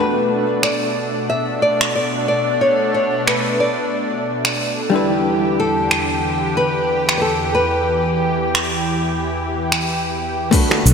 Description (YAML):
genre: sunset chillout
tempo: 91 BPM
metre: 4/4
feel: swing 56% on 16ths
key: unclear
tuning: A4 = 439 Hz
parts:
  - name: nylon-string guitar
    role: melody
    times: 0.0-9.8 s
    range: A4 to E5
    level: -20 LUFS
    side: left 1 dB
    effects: digital delay
  - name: vintage hollow-body jazz guitar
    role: accompaniment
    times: 0.0-10.9 s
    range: G3 to B4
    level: -19 LUFS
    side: left 1 dB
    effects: auto-pan, digital delay
  - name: lush unison pad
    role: sustained chords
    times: 0.0-10.9 s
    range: E2 to G4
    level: -21 LUFS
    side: equal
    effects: chorus
  - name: deep house drum kit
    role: drums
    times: 0.6-10.9 s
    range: cabasa, crash cymbal, finger snaps, hi-hat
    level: -21 LUFS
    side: right 1 dB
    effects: overdrive, gated reverb
  - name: electronic kick drum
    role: drums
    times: 10.5-10.7 s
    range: none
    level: -16 LUFS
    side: equal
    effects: overdrive
  - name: bongos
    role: percussion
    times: 10.7-10.8 s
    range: none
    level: -22 LUFS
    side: equal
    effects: none
  - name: mellow fretless electric bass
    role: bass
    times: 10.9 s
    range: B1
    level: -9 LUFS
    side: equal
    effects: none
room: wet lush hall reverb, RT60 2.8 s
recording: bright 1980s-style digital production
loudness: -16 LUFS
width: side -6 dB against mid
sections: 0.0-10.5 A section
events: none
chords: 0.0 Bm7; 4.9 Em7